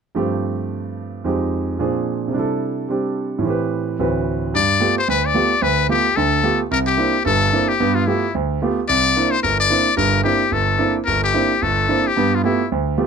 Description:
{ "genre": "jazz", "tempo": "220 BPM", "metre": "4/4", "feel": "swing 59% on 8ths", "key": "G mixolydian", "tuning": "A4 = 440 Hz", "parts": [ { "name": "warm concert grand piano", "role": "accompaniment", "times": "0.1-13.1 s", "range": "G1 to B4", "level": "-19 LUFS", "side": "right 3 dB", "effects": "none" }, { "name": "trumpet with metal mute", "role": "melody", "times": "4.6-12.7 s", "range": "E4 to D5", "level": "-18 LUFS", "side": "left 6 dB", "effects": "none" } ], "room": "light reverb", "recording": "close, detailed microphones", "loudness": "-16 LUFS", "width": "side -6 dB against mid", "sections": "0.1-4.5 A section; 4.5-13.1 B section", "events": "none", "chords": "0.1 G9sus4; 1.2 Fm7; 1.8 Bb9; 2.3 C69; 3.4 Am7; 4.0 D13; 4.5 G9; 6.7 C9; 7.8 G9; 8.9 C9; 12.2 G9", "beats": "| 0.15 0.42 0.69 0.97 | 1.24 1.51 1.79 2.06 | 2.33 2.61 2.88 3.15 | 3.43 3.70 3.97 4.25 | 4.52 4.79 5.07 5.34 | 5.61 5.88 6.16 6.43 | 6.70 6.97 7.25 7.52 | 7.79 8.06 8.34 8.61 | 8.88 9.16 9.43 9.70 | 9.97 10.25 10.52 10.79 | 11.06 11.34 11.61 11.88 | 12.15 12.42 12.70 12.97" }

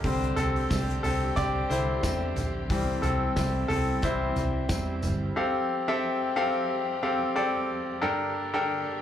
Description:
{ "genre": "piano-driven pop", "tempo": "90 BPM", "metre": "4/4", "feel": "swing 56% on 16ths", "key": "F major", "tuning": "A4 = 440 Hz", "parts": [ { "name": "clear concert grand piano", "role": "accompaniment", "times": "0.0-9.0 s", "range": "G2 to G5", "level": "-27 LUFS", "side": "left 2 dB", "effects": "slapback echo" }, { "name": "warm studio string section", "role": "sustained chords", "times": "0.0-9.0 s", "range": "D3 to G4", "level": "-40 LUFS", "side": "left 1 dB", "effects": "none" }, { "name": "picked steel-string acoustic guitar", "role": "riff", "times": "0.0-5.4 s", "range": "C3 to C5", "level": "-35 LUFS", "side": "right 4 dB", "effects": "none" }, { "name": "vintage muted fingered electric bass", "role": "bass", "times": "0.0-5.3 s", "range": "G1 to E2", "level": "-30 LUFS", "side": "equal", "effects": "none" }, { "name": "loose indie drum kit", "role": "drums", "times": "0.0-5.2 s", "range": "hi-hat, kick drum, snare drum, toms", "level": "-33 LUFS", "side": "equal", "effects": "none" }, { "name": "tambourine", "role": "percussion", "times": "0.4-5.2 s", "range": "none", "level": "-44 LUFS", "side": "left 3 dB", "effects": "none" } ], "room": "light reverb", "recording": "live gig heard through the venue's PA, club reverb", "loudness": "-25 LUFS", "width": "side -10 dB against mid", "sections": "0.0-5.4 A section; 5.4-9.0 A section", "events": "grand piano solo 0.0-5.4", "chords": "0.0 Csus2; 2.7 Am7/C; 4.0 C; 5.4 Fadd9; 8.0 Gmadd9", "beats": "| 0.04 0.70 1.37 2.04 | 2.70 3.37 4.03 4.70 | 5.36 6.03 6.69 7.36 | 8.02 8.68" }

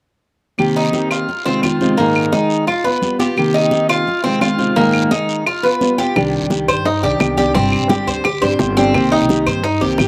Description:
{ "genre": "latin, Cuban son and guajira", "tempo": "172 BPM", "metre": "4/4", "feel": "straight", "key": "C minor", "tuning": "A4 = 441 Hz", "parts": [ { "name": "nylon-string guitar", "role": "accompaniment", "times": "0.6-10.1 s", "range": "Ab2 to Ab4", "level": "-20 LUFS", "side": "equal", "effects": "none" }, { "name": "claves", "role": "percussion", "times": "0.6-10.1 s", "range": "none", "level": "-24 LUFS", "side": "equal", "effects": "none" }, { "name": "congas", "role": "percussion", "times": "0.6-10.1 s", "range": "none", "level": "-25 LUFS", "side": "equal", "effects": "none" }, { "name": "guiro", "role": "percussion", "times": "0.6-10.1 s", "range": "none", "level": "-33 LUFS", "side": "equal", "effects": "none" }, { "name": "Cuban tres", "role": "arpeggios", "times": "0.8-10.1 s", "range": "Bb3 to C5", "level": "-20 LUFS", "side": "equal", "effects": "slapback echo" }, { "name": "upright bass", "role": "bass", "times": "6.2-10.1 s", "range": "G1 to G2", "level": "-25 LUFS", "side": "equal", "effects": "none" }, { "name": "bongos", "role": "percussion", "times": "6.2-10.1 s", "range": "none", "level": "-25 LUFS", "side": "equal", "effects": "slapback echo" } ], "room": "little or no reverb", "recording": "recorded outdoors, with no room sound", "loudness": "-16 LUFS", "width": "mono", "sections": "0.6-6.2 A section; 6.2-10.1 B section", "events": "none", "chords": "0.6 Cm7; 1.3 Fm7; 2.0 Absus2; 2.7 G7; 3.4 Cm7; 4.1 Fm7; 4.8 Absus2; 5.5 G7; 6.2 Cmadd9; 7.6 Gsus4; 8.9 Cm7", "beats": "| 0.58 0.93 1.28 1.63 | 1.98 2.33 2.68 3.02 | 3.37 3.72 4.07 4.42 | 4.76 5.11 5.46 5.81 | 6.16 6.51 6.86 7.20 | 7.55 7.90 8.25 8.60 | 8.95 9.29 9.64 9.99" }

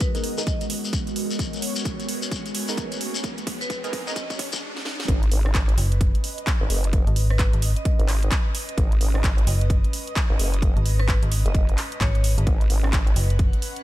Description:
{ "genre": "bass house", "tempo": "130 BPM", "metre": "4/4", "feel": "swing 61% on 16ths", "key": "G# minor", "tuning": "A4 = 440 Hz", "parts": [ { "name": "deep dark ambient pad", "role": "sustained chords", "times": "0.0-13.8 s", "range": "G#3 to A#5", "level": "-35 LUFS", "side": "equal", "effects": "chorus, built-in reverb, sidechain pumping" }, { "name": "electronic kick drum", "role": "drums", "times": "0.0-13.5 s", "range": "none", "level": "-23 LUFS", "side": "equal", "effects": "overdrive" }, { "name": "house drum kit", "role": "drums", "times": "0.0-13.8 s", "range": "handclaps, hi-hat, rim click, snare drum", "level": "-30 LUFS", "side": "right 1 dB", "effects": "overdrive" }, { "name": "shekere", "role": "percussion", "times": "0.0-4.6 s", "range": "none", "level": "-32 LUFS", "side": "left 5 dB", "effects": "none" }, { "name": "riser", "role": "sound effects", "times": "0.0-5.1 s", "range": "none", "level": "-37 LUFS", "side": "right 2 dB", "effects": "none" }, { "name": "airy breathy pad", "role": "texture", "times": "0.0-13.8 s", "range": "G#3 to F#5", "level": "-35 LUFS", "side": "right 1 dB", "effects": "chorus, phaser, sidechain pumping" }, { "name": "band-passed chord stab", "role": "stabs", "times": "0.1-4.1 s", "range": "B3 to A#4", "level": "-34 LUFS", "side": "right 2 dB", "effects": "chorus, phaser, sidechain pumping, tape echo" }, { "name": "vibraphone with medium mallets", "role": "melody", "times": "0.4-0.6, 3.6-4.3, 7.3-7.9, 11.0-12.2 s", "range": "B4 to D#5", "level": "-36 LUFS", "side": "equal", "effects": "tape echo" }, { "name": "vowel-sweep wobble bass", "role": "bass", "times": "5.1-13.1 s", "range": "F#1 to G#1", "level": "-22 LUFS", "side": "equal", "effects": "chorus, sidechain pumping" }, { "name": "metallic FM bass", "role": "bass", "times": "5.8-13.5 s", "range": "F#1 to G#1", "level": "-21 LUFS", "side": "equal", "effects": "tube saturation, sidechain pumping" } ], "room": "digital ambience", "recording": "high-pass filter", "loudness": "-20 LUFS", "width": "side -16 dB against mid", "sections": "0.0-5.1 A section; 5.1-13.8 B section", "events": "build-up 0.0-5.1; riser 0.0-5.1; filter sweep on synth stab 0.0-5.1; filter sweep 0.0-5.1; drum fill 1.4-4.6, 4.7-5.1; drop 5.1-13.8", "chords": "0.0 G#madd9", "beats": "0.01 0.47 0.93 | 1.39 1.85 2.32 2.78 | 3.24 3.70 4.16 4.62 | 5.08 5.55 6.01 6.47 | 6.93 7.39 7.85 8.32 | 8.78 9.24 9.70 10.16 | 10.62 11.09 11.55 12.01 | 12.47 12.93 13.39" }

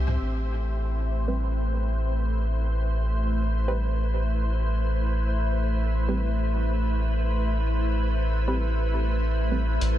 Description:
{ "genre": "ambient dub", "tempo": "100 BPM", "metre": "4/4", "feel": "swing 55% on 16ths", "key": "A minor", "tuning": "A4 = 440 Hz", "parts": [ { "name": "soft additive organ-like pad", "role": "sustained chords", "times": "0.0-10.0 s", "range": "A3 to E5", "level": "-30 LUFS", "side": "equal", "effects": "ensemble chorus, built-in reverb" }, { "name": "soft dub sub bass", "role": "bass", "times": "0.0-10.0 s", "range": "A1 to C2", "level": "-24 LUFS", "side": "equal", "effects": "none" }, { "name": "electronic congas and hi-hat", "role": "drums", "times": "0.1-0.2, 9.8-9.9 s", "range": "none", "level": "-38 LUFS", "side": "right 1 dB", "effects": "studio reverb, dub echo" }, { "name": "filtered dub chord stab", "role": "stabs", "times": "1.3-9.6 s", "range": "G3 to B4", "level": "-36 LUFS", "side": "right 2 dB", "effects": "chorus, vintage 12-bit sampler grit, dub echo" } ], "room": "light reverb, digital ambience", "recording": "none", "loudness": "-23 LUFS", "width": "side -12 dB against mid", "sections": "0.2-9.8 A section", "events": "filter sweep on ambient pad 0.2-9.8", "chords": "0.2 Am9", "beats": "| 0.21 0.81 1.41 2.01 | 2.61 3.21 3.81 4.41 | 5.01 5.61 6.21 6.81 | 7.41 8.01 8.61 9.21 | 9.81" }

